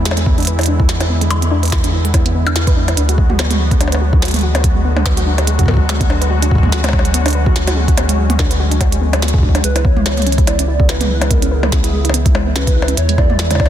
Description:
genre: IDM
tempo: 144 BPM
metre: 4/4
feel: swing 56% on 16ths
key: unclear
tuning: A4 = 439 Hz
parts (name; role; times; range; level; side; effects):
- warm analog pad; sustained chords; 0.0-13.7 s; C#3 to F#4; -22 LUFS; left 2 dB; chorus
- soft round pluck; arpeggios; 0.0-13.7 s; G#3 to D5; -23 LUFS; right 2 dB; chorus, digital delay
- round analog bass; bass; 0.0-13.7 s; C#2 to E2; -16 LUFS; equal; none
- glitchy drum kit; drums; 0.1-13.7 s; hi-hat, percussion blips, snare drum, toms; -20 LUFS; equal; overdrive
- electronic kick drum; drums; 0.3-13.7 s; none; -15 LUFS; equal; overdrive
- warbly nostalgic lead; melody; 9.6-13.7 s; G#4 to D5; -22 LUFS; right 2 dB; ensemble chorus, digital delay
room: light reverb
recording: dense, heavily limited modern master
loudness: -12 LUFS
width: side -11 dB against mid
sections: 0.0-13.7 A section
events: none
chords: 0.0 E7; 3.0 Bm6/D; 9.6 C#m7; 13.0 E7

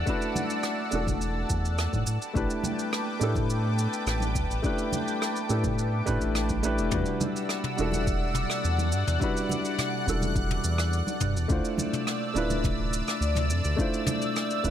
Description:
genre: sunset chillout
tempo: 105 BPM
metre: 4/4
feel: straight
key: E minor from 6.9 s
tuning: A4 = 440 Hz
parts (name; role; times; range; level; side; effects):
- dark grand piano; accompaniment; 0.0-14.7 s; G3 to C5; -30 LUFS; equal; auto-pan, ping-pong delay
- lush unison pad; sustained chords; 0.0-14.7 s; B4 to F#6; -32 LUFS; left 1 dB; chorus, phaser
- round analog bass; bass; 0.0-14.7 s; D1 to A2; -28 LUFS; equal; none
- electronic kick drum; drums; 0.1-14.7 s; none; -31 LUFS; equal; overdrive
- jazz brush drum kit; drums; 0.1-14.7 s; rim click, shaker, toms; -34 LUFS; right 1 dB; none
- congas; percussion; 0.4-14.2 s; none; -36 LUFS; right 2 dB; none
room: light reverb, studio reverb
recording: none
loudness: -25 LUFS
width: side -10 dB against mid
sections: 0.0-6.9 A section; 6.9-14.7 B section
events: none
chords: 0.0 E9sus4; 2.1 A9sus4; 6.9 Em9; 11.5 Dm9

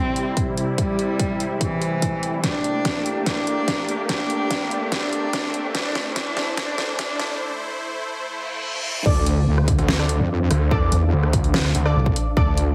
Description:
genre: heavy wobble dubstep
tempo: 145 BPM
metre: 4/4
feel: half-time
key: D minor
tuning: A4 = 439 Hz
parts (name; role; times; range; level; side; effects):
- clear cello; melody; 0.0-7.4 s; E3 to D4; -28 LUFS; equal; low-pass filter, dub echo
- supersaw pad; sustained chords; 0.0-12.7 s; C3 to F5; -32 LUFS; equal; sidechain pumping, low-pass filter
- riser and reverse cymbal; sound effects; 1.4-9.1 s; none; -36 LUFS; equal; none
- warbly tape-like pad; texture; 0.0-7.4 s; D4 to Bb5; -35 LUFS; equal; chorus, built-in reverb, sidechain pumping
- dubstep drum kit; drums; 0.2-12.7 s; crash cymbal, hi-hat, rim click, snare drum; -28 LUFS; equal; none
- electronic kick drum; drums; 0.4-12.5 s; none; -26 LUFS; equal; none
- orchestra-hit-like synth stab; stabs; 9.1-12.6 s; D4 to D5; -30 LUFS; equal; built-in reverb, dub echo
- wobble bass; bass; 9.1-12.7 s; C2 to F2; -22 LUFS; equal; chorus, overdrive
- snarling distorted saw bass; bass; 9.8-11.9 s; D2 to E2; -23 LUFS; equal; distortion, overdrive
room: moderate digital room reverb, RT60 1.0 s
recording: heavily compressed radio sound, multiband compression, high-pass filter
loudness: -22 LUFS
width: mono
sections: 0.0-9.1 A section; 9.1-12.7 B section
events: build-up 0.0-9.1; filter sweep on supersaw synth 0.0-9.1; filter sweep on cello 0.0-9.1; filter sweep 0.0-9.1; drum fill 2.4-7.4; break 7.4-9.1; reverse cymbal 8.4-9.1; drop 9.1-12.7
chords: 0.0 C; 2.4 Gmadd9; 5.7 Am; 9.1 Dm7

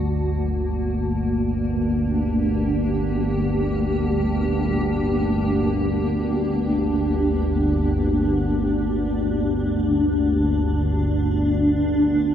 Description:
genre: dark ambient drone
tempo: free time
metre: none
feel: none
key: G minor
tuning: A4 = 440 Hz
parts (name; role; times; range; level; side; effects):
- granular cloud pad; sustained chords; 0.0-12.3 s; A3 to G4; -22 LUFS; equal; built-in reverb, lush chorus
- organ-like drone; drone; 0.0-12.3 s; G1 to D2; -22 LUFS; equal; ensemble chorus, built-in reverb
room: wet huge ambient reverb, RT60 6.9 s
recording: dreamy mix soaked in reverb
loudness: -19 LUFS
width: side -9 dB against mid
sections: 0.0-12.3 A section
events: none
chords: 0.0 Gm; 10.2 Dsus4/G

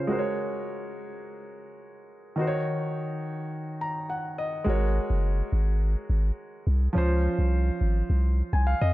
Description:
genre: afrobeats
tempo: 105 BPM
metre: 4/4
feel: straight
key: Ab mixolydian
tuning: A4 = 440 Hz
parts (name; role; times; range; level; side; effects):
- warm baby grand piano; accompaniment; 0.0-8.9 s; Db3 to Bb5; -29 LUFS; equal; low-pass filter
- punchy sub bass; bass; 4.7-8.9 s; Gb1 to F2; -23 LUFS; equal; none
room: light reverb, studio reverb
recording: dark, warm production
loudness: -24 LUFS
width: side -17 dB against mid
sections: 0.0-4.7 A section; 4.7-8.9 B section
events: grand piano fill 3.5-4.7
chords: 0.1 Ab9sus4; 2.4 Ebm7; 4.7 Ab9sus4; 7.0 Dbmaj7

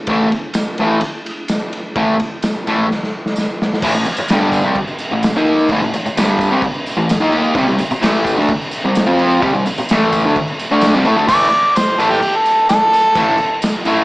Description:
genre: garage rock duo or trio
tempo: 128 BPM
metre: 4/4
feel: straight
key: A minor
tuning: A4 = 442 Hz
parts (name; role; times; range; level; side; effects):
- fuzz guitar; riff; 0.1-14.0 s; G2 to F4; -14 LUFS; equal; distortion
- raw garage drum kit; drums; 0.1-14.0 s; crash cymbal, kick drum, ride cymbal, snare drum; -19 LUFS; equal; none
- tambourine; percussion; 0.5-14.0 s; none; -34 LUFS; right 2 dB; none
- warm harmonica; melody; 11.3-13.6 s; G4 to D5; -12 LUFS; equal; overdrive
room: moderate echo chamber reverb, RT60 1.5 s, small room ambience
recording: small speaker sound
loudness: -13 LUFS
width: side -20 dB against mid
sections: 0.0-3.8 A section; 3.8-11.3 B section; 11.3-14.0 C section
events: drum fill 2.9-3.8; harmonica solo 11.3-14.0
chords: 0.0 A5; 7.6 C5; 11.3 A5

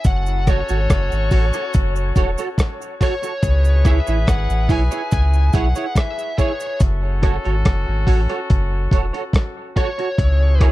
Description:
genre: dub reggae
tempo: 71 BPM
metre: 4/4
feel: straight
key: F# minor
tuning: A4 = 439 Hz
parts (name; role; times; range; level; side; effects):
- high-gain lead guitar; melody; 0.0-10.6 s; C#5 to G#5; -26 LUFS; left 2 dB; distortion, dub echo
- bright horn section; second line; 0.0-10.7 s; C#4 to B4; -30 LUFS; left 2 dB; dub echo
- dusty soul sampler-style drum kit; drums; 0.0-10.7 s; hi-hat, kick drum, rim click; -17 LUFS; equal; none
- cabasa; percussion; 0.0-7.0 s; none; -40 LUFS; right 13 dB; none
- warm sub bass; bass; 0.1-10.7 s; E1 to C#2; -17 LUFS; equal; none
- semi-hollow electric guitar; accompaniment; 0.5-10.7 s; E4 to C#5; -27 LUFS; right 6 dB; ensemble chorus, dub echo
room: little or no reverb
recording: dry, close 1970s-style studio recording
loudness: -16 LUFS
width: side -17 dB against mid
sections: 0.0-10.7 A section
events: part muted 6.8-10.7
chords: 0.0 F#m; 3.4 C#m; 6.8 F#m; 10.2 C#m

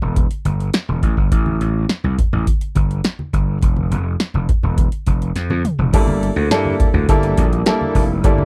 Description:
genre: early-eighties boogie funk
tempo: 104 BPM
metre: 4/4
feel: straight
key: G dorian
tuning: A4 = 436 Hz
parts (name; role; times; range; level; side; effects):
- gritty slap bass; bass; 0.0-8.4 s; E1 to G2; -21 LUFS; equal; overdrive
- congas; percussion; 0.0-8.4 s; none; -28 LUFS; equal; none
- electro analog drum machine; drums; 0.2-8.4 s; crash cymbal, hi-hat, kick drum, snare drum, toms; -20 LUFS; equal; overdrive
- bright grand piano; accompaniment; 5.9-8.4 s; G3 to A4; -22 LUFS; equal; none
- chorused pulse-width pad; sustained chords; 5.9-8.4 s; G3 to A4; -29 LUFS; equal; none
room: little or no reverb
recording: dry, close 1970s-style studio recording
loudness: -18 LUFS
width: mono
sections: 0.0-5.9 A section; 5.9-8.4 B section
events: drum fill 5.4-5.9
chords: 0.0 G5; 1.0 A7(no3); 3.6 N.C.; 5.9 Gm69

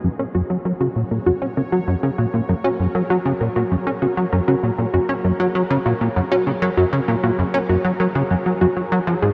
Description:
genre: ambient, sequencer-driven space music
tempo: 98 BPM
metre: 4/4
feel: straight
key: F# major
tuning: A4 = 438 Hz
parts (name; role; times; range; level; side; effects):
- sweeping resonant pad; sustained chords; 0.0-9.3 s; F#3 to C#5; -30 LUFS; equal; chorus
- plucky analog bass; riff; 0.0-9.3 s; F#2 to C#4; -22 LUFS; equal; subtle chorus, analog delay
- warbly dusty pluck; arpeggios; 0.2-9.3 s; F#4 to A#4; -26 LUFS; equal; chorus, analog delay
room: wet huge ambient reverb, RT60 8.1 s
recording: dark, warm production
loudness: -20 LUFS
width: mono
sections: 0.0-9.3 A section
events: fade-in on analog synth pad 0.0-9.3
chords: 0.0 F#add9

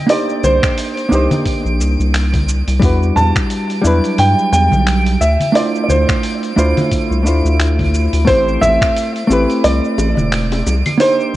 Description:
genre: sunset chillout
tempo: 88 BPM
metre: 4/4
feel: swing 58% on 16ths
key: A minor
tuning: A4 = 444 Hz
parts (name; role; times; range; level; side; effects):
- dark grand piano; melody; 0.0-11.4 s; C5 to A5; -17 LUFS; right 1 dB; tape echo, shimmer reverb
- twinkling granular texture; texture; 0.0-11.4 s; D7; -28 LUFS; right 3 dB; built-in reverb, shimmer reverb
- hollow-body jazz guitar; accompaniment; 0.1-11.4 s; F#3 to C5; -17 LUFS; moving between left 3 dB and right 4 dB; auto-pan, tape echo, shimmer reverb
- dusty soul sampler-style drum kit; drums; 0.1-11.3 s; claves, finger snaps, hi-hat, shaker; -24 LUFS; equal; small room ambience
- round analog bass; bass; 0.4-10.8 s; E1 to G2; -15 LUFS; equal; none
- congas and bongos; percussion; 0.4-11.0 s; none; -22 LUFS; left 1 dB; none
- electronic kick drum; drums; 0.6-8.9 s; none; -18 LUFS; equal; small room ambience
room: moderate plate reverb, RT60 2.4 s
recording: worn, warbling old tape, cassette tape, warbly pitch drift, nothing above 10.7 kHz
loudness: -12 LUFS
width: side -15 dB against mid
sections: 0.0-11.4 A section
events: none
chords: 0.0 Cm9; 2.8 Em9; 5.2 Dm9; 8.3 Am9; 10.7 Cm9

